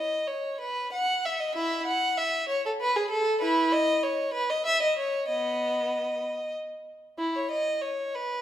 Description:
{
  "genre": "classical, baroque-style suite movement for unaccompanied violin",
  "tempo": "95 BPM",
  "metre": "3/4",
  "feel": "rubato",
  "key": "unclear",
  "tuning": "A4 = 438 Hz",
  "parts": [
    { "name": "rich violin", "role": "solo", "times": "0.0-8.4 s", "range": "B3 to F#5", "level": "-25 LUFS", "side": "equal", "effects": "none" }
  ],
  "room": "wet recital hall reverb, RT60 1.5 s",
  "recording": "recorded in a church or concert hall",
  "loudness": "-25 LUFS",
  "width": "side -11 dB against mid",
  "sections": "0.0-8.4 A section",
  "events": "none",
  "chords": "none",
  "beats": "0.28 0.91 | 1.55 2.17 2.79 | 3.41 4.03 4.66 | 5.29 5.92 6.55 | 7.20 7.84"
}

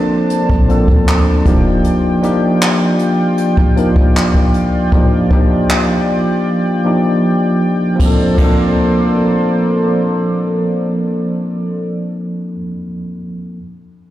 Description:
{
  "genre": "contemporary R&B",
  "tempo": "78 BPM",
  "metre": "4/4",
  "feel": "straight",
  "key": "Bb major",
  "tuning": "A4 = 445 Hz",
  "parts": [
    { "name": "tine electric piano", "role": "accompaniment", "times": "0.0-13.6 s", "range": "F3 to Bb4", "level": "-14 LUFS", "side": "equal", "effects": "medium stereo tremolo" },
    { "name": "chorused pulse-width pad", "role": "sustained chords", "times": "0.0-11.8 s", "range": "Bb3 to A5", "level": "-20 LUFS", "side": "equal", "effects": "none" },
    { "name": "jazz brush drum kit", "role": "drums", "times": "0.3-8.6 s", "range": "handclaps, hi-hat, kick drum, ride cymbal", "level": "-15 LUFS", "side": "equal", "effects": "none" },
    { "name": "clean 808-style bass", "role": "bass", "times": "0.5-1.8 s", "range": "Eb1 to D2", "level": "-15 LUFS", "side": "equal", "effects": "none" }
  ],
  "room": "light reverb, small room reverb",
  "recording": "played on a big sound system in a bare room, large studio reverb",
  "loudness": "-12 LUFS",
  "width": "side -14 dB against mid",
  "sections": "0.0-8.0 A section; 8.0-11.1 B section",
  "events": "drums muted 6.5-8.0",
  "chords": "0.0 Bbmaj9; 1.5 Ebmaj9; 8.0 Bbmaj9",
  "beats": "0.30 1.07 | 1.84 2.61 3.38 4.15 | 4.92 5.69 6.46 7.23 | 8.00 8.77 9.54 10.30"
}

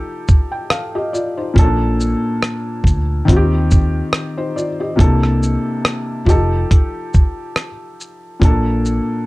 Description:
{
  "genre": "lo-fi hip hop",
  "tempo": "70 BPM",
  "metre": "4/4",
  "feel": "swing 56% on 16ths",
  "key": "Bb major",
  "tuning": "A4 = 440 Hz",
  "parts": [
    { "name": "felt-muted upright piano", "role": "accompaniment", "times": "0.0-9.3 s", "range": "Bb2 to G5", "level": "-19 LUFS", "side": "left 1 dB", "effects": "low-pass filter" },
    { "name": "dusty soul sampler-style drum kit", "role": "drums", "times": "0.3-9.1 s", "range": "hi-hat, kick drum, rim click, shaker", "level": "-13 LUFS", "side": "equal", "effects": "none" },
    { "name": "finger snap", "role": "percussion", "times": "0.7-7.8 s", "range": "none", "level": "-34 LUFS", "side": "right 7 dB", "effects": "none" },
    { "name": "vintage muted fingered electric bass", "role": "bass", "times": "1.6-9.0 s", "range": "F1 to Eb2", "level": "-18 LUFS", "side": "equal", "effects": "none" }
  ],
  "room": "little or no reverb",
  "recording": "cassette tape",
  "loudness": "-14 LUFS",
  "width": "side -20 dB against mid",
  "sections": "0.0-9.3 A section",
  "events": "none",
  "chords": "0.0 F9; 1.6 Bbmaj7; 3.3 Eb69; 5.0 C13; 6.3 F9; 8.4 Bbmaj7",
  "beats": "0.70 | 1.56 2.42 3.28 4.13 | 4.99 5.85 6.71 7.56 | 8.42"
}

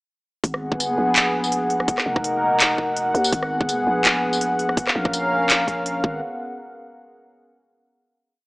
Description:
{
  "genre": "half-time drum and bass",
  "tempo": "166 BPM",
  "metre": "4/4",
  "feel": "swing 55% on 16ths, half-time",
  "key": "G# dorian",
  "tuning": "A4 = 440 Hz",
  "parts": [
    { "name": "dark analog pad", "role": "sustained chords", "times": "0.4-6.2 s", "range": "B3 to F#5", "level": "-21 LUFS", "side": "equal", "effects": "chorus, sidechain pumping" },
    { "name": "growling 808-style bass", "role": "bass", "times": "0.4-6.2 s", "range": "E#1 to D#2", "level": "-29 LUFS", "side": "equal", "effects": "none" },
    { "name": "drum and bass drum kit", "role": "drums", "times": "0.4-5.9 s", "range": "handclaps, hi-hat, rim click, tambourine", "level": "-20 LUFS", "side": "equal", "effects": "none" },
    { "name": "electronic kick drum", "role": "drums", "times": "0.4-6.1 s", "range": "none", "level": "-24 LUFS", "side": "equal", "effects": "none" }
  ],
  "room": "wet echo chamber reverb, RT60 1.8 s",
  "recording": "small speaker sound",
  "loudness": "-18 LUFS",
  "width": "side -23 dB against mid",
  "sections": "0.4-6.2 drop; 6.2-7.7 final hit",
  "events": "drop 0.4-6.2",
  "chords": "0.4 G#m7; 1.9 D#m; 3.3 G#m7; 4.8 A#m; 6.0 G#m7; 6.2 N.C.",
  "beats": "| 0.44 0.80 1.16 1.52 | 1.88 2.25 2.61 2.97 | 3.33 3.69 4.05 4.41 | 4.78 5.14 5.50 5.86"
}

